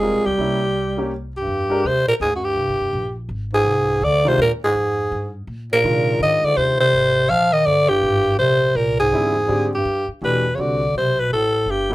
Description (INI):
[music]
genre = modal jazz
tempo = 165 BPM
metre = 3/4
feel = swing 63% on 8ths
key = F dorian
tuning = A4 = 439 Hz
[part]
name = growling alto saxophone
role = melody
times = 0.0-11.9 s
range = Gb4 to F5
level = -18 LUFS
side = equal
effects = none
[part]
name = mellow bass clarinet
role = second line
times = 0.0-11.9 s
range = Gb2 to Ab3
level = -23 LUFS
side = right 1 dB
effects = none
[part]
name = warm upright piano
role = accompaniment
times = 0.0-1.8, 4.2-6.9, 9.1-11.9 s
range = D3 to Bb4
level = -25 LUFS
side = left 1 dB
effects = none
[part]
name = upright bass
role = bass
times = 0.0-11.9 s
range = F1 to C3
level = -29 LUFS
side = equal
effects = none
[sound]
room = moderate small room reverb, RT60 0.5 s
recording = rough home demo mix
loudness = -16 LUFS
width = side -17 dB against mid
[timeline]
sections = 0.0-1.5 A section; 1.5-10.2 B section; 10.2-11.9 C section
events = none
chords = 0.4 C7b9; 1.5 Fm11; 9.1 E7alt; 10.2 A9sus4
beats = 0.02 | 0.39 0.75 1.11 | 1.48 1.84 2.21 | 2.57 2.94 3.30 | 3.67 4.03 4.39 | 4.76 5.12 5.49 | 5.85 6.21 6.58 | 6.94 7.31 7.67 | 8.04 8.40 8.76 | 9.13 9.49 9.86 | 10.22 10.58 10.95 | 11.31 11.68